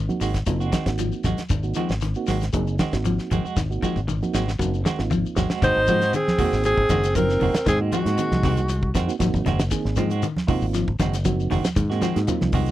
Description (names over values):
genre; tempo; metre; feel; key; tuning
afrobeat; 117 BPM; 4/4; swing 53% on 16ths; Ab mixolydian; A4 = 440 Hz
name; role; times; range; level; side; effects
semi-hollow electric guitar; arpeggios; 0.0-12.7 s; C3 to Gb3; -29 LUFS; left 6 dB; vibrato effect
fingered electric bass; bass; 0.0-12.7 s; Gb1 to Ab2; -24 LUFS; equal; none
mellow reed electric piano; accompaniment; 0.1-12.7 s; Bb3 to Ab4; -29 LUFS; right 6 dB; fast tremolo
congas; percussion; 0.1-12.7 s; none; -27 LUFS; right 2 dB; none
shekere; percussion; 0.1-12.7 s; none; -35 LUFS; left 5 dB; none
clean electric guitar; stabs; 0.2-12.7 s; Eb3 to Gb4; -28 LUFS; right 8 dB; tremolo
damped 70s drum kit; drums; 0.2-12.7 s; hi-hat, kick drum, snare drum, toms; -27 LUFS; equal; none
bright alto saxophone; melody; 5.6-8.9 s; Gb4 to C5; -22 LUFS; equal; none
breathy alto saxophone; second line; 5.6-8.9 s; Ab3 to Eb4; -30 LUFS; right 2 dB; none
room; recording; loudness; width
little or no reverb; dry, close 1970s-style studio recording; -20 LUFS; side -14 dB against mid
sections
0.0-5.6 A section; 5.6-12.7 B section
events
drum fill 3.6-5.6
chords
0.0 Ab7